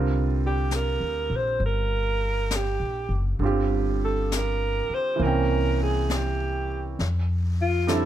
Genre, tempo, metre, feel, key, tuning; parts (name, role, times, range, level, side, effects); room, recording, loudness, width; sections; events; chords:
jazz ballad; 67 BPM; 4/4; swing 66% on 8ths; A4 = 441 Hz
bright baby grand piano; accompaniment; 0.0-8.1 s; D3 to G5; -29 LUFS; right 5 dB
upright bass; bass; 0.0-8.1 s; F#1 to F2; -26 LUFS; left 1 dB
mellow alto saxophone; melody; 0.5-8.1 s; E4 to C5; -27 LUFS; right 2 dB
jazz brush drum kit; drums; 0.7-8.1 s; brushed snare drum, hi-hat, snare drum; -34 LUFS; left 4 dB
little or no reverb; -23 LUFS; side -11 dB against mid
0.0-8.1 A section
0.0 Csus2; 3.4 G7sus4; 5.2 C7b9; 7.0 Fmaj9